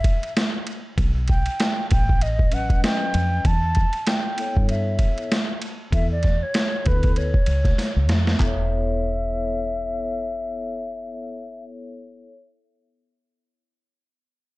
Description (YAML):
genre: hip hop, jazz-hop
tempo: 97 BPM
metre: 4/4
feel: swing 58% on 16ths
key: E dorian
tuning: A4 = 441 Hz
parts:
  - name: breathy mellow concert flute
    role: melody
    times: 0.0-11.6 s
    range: B4 to A5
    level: -28 LUFS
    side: equal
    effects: low-pass filter, plate reverb
  - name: deep dub fingered electric bass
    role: bass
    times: 0.0-12.3 s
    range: E1 to G2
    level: -23 LUFS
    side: equal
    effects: none
  - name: boom bap sampler-style drum kit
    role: drums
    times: 0.0-8.6 s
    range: handclaps, hi-hat, kick drum, ride cymbal, snare drum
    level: -21 LUFS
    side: equal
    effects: vintage 12-bit sampler grit
  - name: vibraphone with soft mallets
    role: accompaniment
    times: 2.5-12.3 s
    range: F#3 to E5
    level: -31 LUFS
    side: left 3 dB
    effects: low-pass filter, plate reverb
room: little or no reverb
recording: dark, warm production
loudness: -20 LUFS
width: side -20 dB against mid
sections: 0.0-8.4 A section; 8.4-10.9 B section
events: filter sweep 0.0-8.4; drum fill 7.8-8.4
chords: 0.0 Em; 1.0 B7b13; 3.4 E5